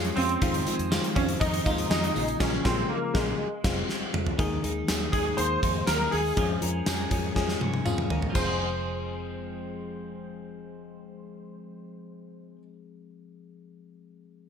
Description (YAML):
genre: 1980s-style pop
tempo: 121 BPM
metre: 4/4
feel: straight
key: F minor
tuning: A4 = 440 Hz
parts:
  - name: FM electric piano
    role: accompaniment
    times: 0.0-14.5 s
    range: Db3 to Bb5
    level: -33 LUFS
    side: left 6 dB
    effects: chorus
  - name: twelve-string electric guitar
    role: riff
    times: 0.0-12.7 s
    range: Eb3 to Ab4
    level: -37 LUFS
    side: right 4 dB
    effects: lush chorus
  - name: vintage muted fingered electric bass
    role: bass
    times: 0.0-12.6 s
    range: F1 to G2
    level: -33 LUFS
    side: right 1 dB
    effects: none
  - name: gated 80s drum kit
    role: drums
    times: 0.0-8.5 s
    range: crash cymbal, hi-hat, kick drum, snare drum, tambourine, toms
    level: -28 LUFS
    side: right 1 dB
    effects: gated reverb
  - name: clear baby grand piano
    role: melody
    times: 0.2-12.6 s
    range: Ab3 to C5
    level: -30 LUFS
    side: right 1 dB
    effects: ensemble chorus
  - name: tambourine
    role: percussion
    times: 0.9-8.6 s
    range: none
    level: -43 LUFS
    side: right 5 dB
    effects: none
room: moderate plate reverb, RT60 1.1 s, small room reverb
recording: bright 1980s-style digital production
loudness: -24 LUFS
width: side -7 dB against mid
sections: 0.0-4.4 A section; 4.4-8.4 B section; 8.4-12.3 C section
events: band accent 2.4-4.4; drum fill 3.9-4.4, 7.4-8.4; FM electric piano fill 7.6-8.4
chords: 0.4 Fm7; 2.2 Bbm7; 3.4 Fm; 4.4 Ebsus4; 6.4 Db/F; 8.4 Fm